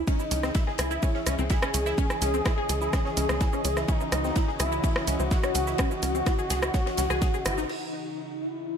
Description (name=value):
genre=melodic techno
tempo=126 BPM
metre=4/4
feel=straight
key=C# minor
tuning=A4 = 440 Hz
part: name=tight sequenced synth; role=arpeggios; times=0.0-7.7 s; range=B#3 to G#4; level=-33 LUFS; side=equal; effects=chorus, phaser, sidechain pumping, analog delay
part: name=tight sequencer bass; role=bass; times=0.0-7.7 s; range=G#1 to C#2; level=-30 LUFS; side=equal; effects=tube saturation, sidechain pumping
part: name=expressive portamento lead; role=melody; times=0.1-8.8 s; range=D#4 to G#4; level=-30 LUFS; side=left 1 dB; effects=ensemble chorus, sidechain pumping, dub echo
part: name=warm analog pad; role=sustained chords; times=0.1-8.8 s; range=C#3 to D#5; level=-36 LUFS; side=equal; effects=chorus, sidechain pumping
part: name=electronic kick drum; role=drums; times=0.1-7.3 s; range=none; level=-26 LUFS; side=equal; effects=none
part: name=house drum kit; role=drums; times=0.1-7.8 s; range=crash cymbal, hi-hat, rim click, shaker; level=-32 LUFS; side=right 1 dB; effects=analog delay
part: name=oversized low-tuned drum kit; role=drums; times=0.1-7.7 s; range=ride cymbal, snare drum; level=-41 LUFS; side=left 3 dB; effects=high-pass filter on cymbals, high-pass filter on snare, high-pass filter on room
room=light reverb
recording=echo-heavy mix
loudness=-24 LUFS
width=side -7 dB against mid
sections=0.0-7.7 A section; 7.7-8.8 B section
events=band accent 7.5; filter sweep on analog synth pad 7.7-8.8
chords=0.0 C#madd9